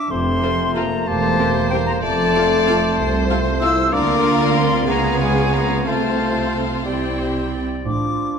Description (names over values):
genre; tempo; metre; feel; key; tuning
cinematic, playful, whimsical film cue; 62 BPM (dotted quarters); 6/8; straight; F major; A4 = 439 Hz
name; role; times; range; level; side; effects
bright concert flute; second line; 0.0-8.4 s; G5 to E6; -23 LUFS; left 1 dB; none
clear oboe; second line; 0.0-7.8 s; C5 to D5; -31 LUFS; equal; none
mellow French horn section; sustained chords; 0.0-8.4 s; G3 to E4; -23 LUFS; left 2 dB; none
clear clarinet; second line; 0.1-8.4 s; E4 to G4; -31 LUFS; left 6 dB; none
warm bassoon; accompaniment; 0.1-8.4 s; F3 to Cb4; -26 LUFS; right 1 dB; none
rich chamber cello section; bass; 0.1-8.4 s; C2 to D3; -25 LUFS; right 4 dB; none
rich chamber double bass section; bass; 0.1-8.4 s; E1 to D2; -25 LUFS; right 4 dB; none
rich chamber violin section; second line; 0.4-7.6 s; G4 to G5; -28 LUFS; left 3 dB; none
rich studio viola section; accompaniment; 0.4-7.7 s; Ab3 to Ab4; -27 LUFS; right 1 dB; none
rich chamber violin section; melody; 1.1-7.3 s; Ab4 to D5; -25 LUFS; left 7 dB; none
room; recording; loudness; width
moderate scoring stage reverb, RT60 1.7 s; none; -16 LUFS; side -6 dB against mid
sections
0.1-8.4 A section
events
none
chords
0.1 F; 1.1 C7/E; 2.0 F; 3.9 Bb/D; 4.9 Db7; 5.9 F/C; 6.9 C; 7.9 F/A